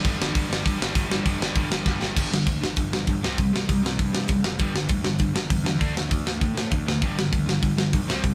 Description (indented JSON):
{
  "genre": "punk rock",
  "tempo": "198 BPM",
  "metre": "4/4",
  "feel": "straight",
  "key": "unclear",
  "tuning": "A4 = 445 Hz",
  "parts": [
    { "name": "distorted electric guitar", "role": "riff", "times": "0.0-8.3 s", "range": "G2 to D4", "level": "-28 LUFS", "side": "equal", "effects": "distortion" },
    { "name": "tight metal drum kit", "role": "drums", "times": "0.0-8.3 s", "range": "crash cymbal, hi-hat, kick drum, snare drum", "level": "-27 LUFS", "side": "equal", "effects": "none" },
    { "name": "fuzz picked electric bass", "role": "bass", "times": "0.1-8.3 s", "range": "F#1 to A2", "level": "-34 LUFS", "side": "equal", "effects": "overdrive" }
  ],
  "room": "moderate studio reverb, RT60 0.6 s",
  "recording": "band playing live in one room",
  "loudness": "-24 LUFS",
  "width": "mono",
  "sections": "0.0-2.2 A section; 2.2-8.3 B section",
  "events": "drum fill 1.9-2.2",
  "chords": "0.0 G5; 3.2 C5; 4.6 G5; 5.8 D5; 7.0 G"
}